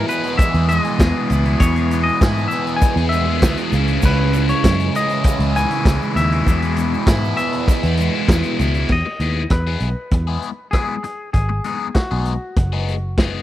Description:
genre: indie rock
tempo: 99 BPM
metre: 4/4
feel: straight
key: E major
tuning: A4 = 440 Hz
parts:
  - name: twangy electric guitar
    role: melody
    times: 0.0-13.4 s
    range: F#4 to G#5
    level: -24 LUFS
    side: left 2 dB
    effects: none
  - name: biting overdriven guitar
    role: riff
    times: 0.0-8.9 s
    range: C#3 to B4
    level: -23 LUFS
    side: right 9 dB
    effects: wide subtle chorus, tape echo
  - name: cranked stack guitar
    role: riff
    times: 0.0-13.4 s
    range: E2 to G#4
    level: -23 LUFS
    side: left 8 dB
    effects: overdrive, phaser
  - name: picked electric bass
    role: bass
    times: 0.0-13.4 s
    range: F#1 to G#2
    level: -19 LUFS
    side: equal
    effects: none
  - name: vintage drum kit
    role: drums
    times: 0.1-13.3 s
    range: crash cymbal, hi-hat, kick drum, rim click, snare drum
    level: -18 LUFS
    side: equal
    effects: none
  - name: egg shaker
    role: percussion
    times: 0.1-8.8 s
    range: none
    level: -39 LUFS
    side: right 20 dB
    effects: none
room: small room reverb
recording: dry, close 1970s-style studio recording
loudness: -16 LUFS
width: side -13 dB against mid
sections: 0.0-8.9 A section; 8.9-13.4 B section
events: none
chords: 0.0 E; 3.7 C#madd9; 6.5 E; 8.9 Emaj7; 11.4 G#m7

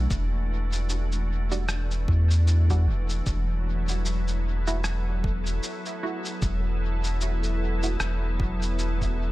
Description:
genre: ambient dub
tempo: 76 BPM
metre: 4/4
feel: swing 57% on 16ths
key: unclear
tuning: A4 = 440 Hz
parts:
  - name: soft additive organ-like pad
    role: sustained chords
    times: 0.0-9.3 s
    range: E3 to A4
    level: -34 LUFS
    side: left 1 dB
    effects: ensemble chorus, built-in reverb
  - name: warm sub bass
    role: bass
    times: 0.0-9.3 s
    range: E1 to E2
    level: -24 LUFS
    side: equal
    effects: none
  - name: electronic cabasa and rim click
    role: drums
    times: 0.1-9.2 s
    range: none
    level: -34 LUFS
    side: left 1 dB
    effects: small room ambience, dub echo
  - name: electronic kick drum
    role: drums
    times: 0.1-9.2 s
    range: none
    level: -30 LUFS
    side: equal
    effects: overdrive, small room ambience
  - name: filtered dub chord stab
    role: stabs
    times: 1.5-8.0 s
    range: G3 to F#4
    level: -36 LUFS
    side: right 3 dB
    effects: wide subtle chorus, dub echo
  - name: bubbling stepped-filter texture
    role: texture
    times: 4.9-9.3 s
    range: A4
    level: -42 LUFS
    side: right 3 dB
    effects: chorus, built-in reverb
room: little or no reverb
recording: none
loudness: -24 LUFS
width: side -17 dB against mid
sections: 0.0-9.3 A section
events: none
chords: 0.0 E7sus2; 3.3 F#m7/E

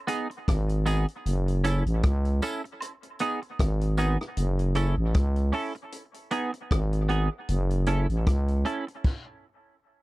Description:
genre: dub reggae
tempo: 77 BPM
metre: 4/4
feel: swing 55% on 16ths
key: F# dorian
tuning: A4 = 440 Hz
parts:
  - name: semi-hollow electric guitar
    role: accompaniment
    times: 0.1-8.9 s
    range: B3 to A4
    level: -31 LUFS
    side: right 3 dB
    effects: analog chorus, dub echo
  - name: vintage drum kit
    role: drums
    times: 0.1-9.2 s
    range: crash cymbal, hi-hat, kick drum, rim click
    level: -27 LUFS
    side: equal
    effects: none
  - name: tambourine and woodblock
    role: percussion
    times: 0.1-5.0 s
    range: none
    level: -43 LUFS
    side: right 2 dB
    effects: dub echo
  - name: growling FM bass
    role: bass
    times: 0.5-8.6 s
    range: F#1 to C#2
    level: -24 LUFS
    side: equal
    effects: none
room: little or no reverb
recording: dry, close 1970s-style studio recording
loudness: -24 LUFS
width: side -20 dB against mid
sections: 0.0-10.0 A section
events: part muted 4.4-10.0; stop 9.0-10.0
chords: 0.0 G#m; 1.3 F#m7; 2.8 G#m; 4.4 F#m7; 5.9 G#m; 7.5 F#m7; 9.0 N.C.

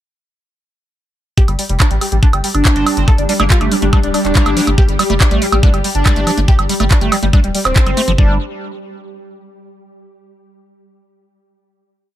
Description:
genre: psychedelic trance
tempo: 141 BPM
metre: 4/4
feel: straight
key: G minor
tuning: A4 = 439 Hz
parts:
  - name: wide unison lead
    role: melody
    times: 1.4-8.3 s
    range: G3 to A4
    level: -19 LUFS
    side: equal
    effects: phaser, sidechain pumping, digital delay
  - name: swarming drone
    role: sustained chords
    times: 2.4-8.2 s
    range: G3 to G4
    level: -24 LUFS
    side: left 1 dB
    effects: built-in reverb, sidechain pumping
  - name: drum and bass drum kit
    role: drums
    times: 1.4-8.2 s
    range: handclaps, hi-hat, woodblock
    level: -19 LUFS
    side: right 2 dB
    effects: none
  - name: electronic kick drum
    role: drums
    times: 1.4-8.3 s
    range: none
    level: -11 LUFS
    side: equal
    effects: none
  - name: round analog bass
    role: bass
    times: 1.5-8.4 s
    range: D1 to A1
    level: -18 LUFS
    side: equal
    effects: none
  - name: metallic wobble bass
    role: second line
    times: 2.8-4.7 s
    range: Bb3 to C4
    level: -30 LUFS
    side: right 2 dB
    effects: ensemble chorus, sidechain pumping, high-pass filter, digital delay
  - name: liquid acid bass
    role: riff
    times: 3.1-8.4 s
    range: F3 to D4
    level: -21 LUFS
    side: right 2 dB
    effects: chorus, auto-pan, cassette tape, sidechain pumping, digital delay
room: digital ambience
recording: none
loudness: -11 LUFS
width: side -12 dB against mid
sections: 1.4-8.2 groove; 8.2-9.9 final chord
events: none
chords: 1.4 G5

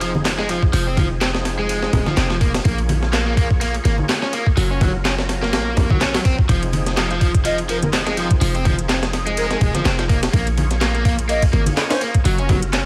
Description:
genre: breakbeat, breaks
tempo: 125 BPM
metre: 4/4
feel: swing 56% on 16ths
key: F phrygian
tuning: A4 = 439 Hz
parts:
  - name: overdriven tonewheel organ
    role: sustained chords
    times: 0.0-12.9 s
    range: F3 to Db5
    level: -31 LUFS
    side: equal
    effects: chorus vibrato, slow rotary speaker, vintage 12-bit sampler grit, sidechain pumping
  - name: overdriven electric guitar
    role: riff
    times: 0.0-12.8 s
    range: F3 to Db4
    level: -26 LUFS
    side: equal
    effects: tube saturation, dub echo
  - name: warm 808-style bass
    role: bass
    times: 0.0-12.9 s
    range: Eb1 to Bb1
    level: -24 LUFS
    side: equal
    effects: none
  - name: breakbeat sampler-style drum kit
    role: drums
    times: 0.0-12.9 s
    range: hi-hat, kick drum, ride cymbal, snare drum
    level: -22 LUFS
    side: equal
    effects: none
  - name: congas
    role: percussion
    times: 0.1-12.6 s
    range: none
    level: -26 LUFS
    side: equal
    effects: none
  - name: house drum kit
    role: drums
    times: 0.3-12.8 s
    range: handclaps, hi-hat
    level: -29 LUFS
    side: equal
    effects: none
  - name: mellow hollow jazz flute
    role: melody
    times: 7.5-12.0 s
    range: Bb4 to Eb5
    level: -28 LUFS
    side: equal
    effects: telephone sound, dub echo
room: light reverb, digital ambience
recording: vinyl crackle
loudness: -19 LUFS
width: mono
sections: 0.0-12.9 A section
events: none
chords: 0.0 Fm7; 2.7 Bbm7; 4.6 Gbmaj7; 6.5 Fm7; 10.3 Bbm7; 12.3 Gbmaj7

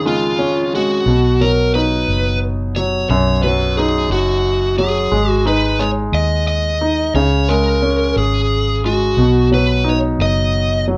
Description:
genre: six-eight pop ballad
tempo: 59 BPM (dotted quarters)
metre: 6/8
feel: straight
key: unclear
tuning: A4 = 441 Hz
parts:
  - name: lead guitar through a small cranked amp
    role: melody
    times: 0.0-10.8 s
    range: E#4 to D#5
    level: -20 LUFS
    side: equal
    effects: overdrive
  - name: clear baby grand piano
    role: accompaniment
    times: 0.0-11.0 s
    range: E#2 to D#4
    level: -21 LUFS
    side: equal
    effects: none
  - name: vintage muted fingered electric bass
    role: bass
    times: 1.1-11.0 s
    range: F#1 to D#2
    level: -21 LUFS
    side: equal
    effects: none
room: light reverb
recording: rough home demo mix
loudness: -16 LUFS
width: mono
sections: 0.0-1.1 A section; 1.1-11.0 B section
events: none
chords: 0.0 C#add9/E#; 1.1 B; 5.1 G#5; 7.2 C#5; 9.2 B

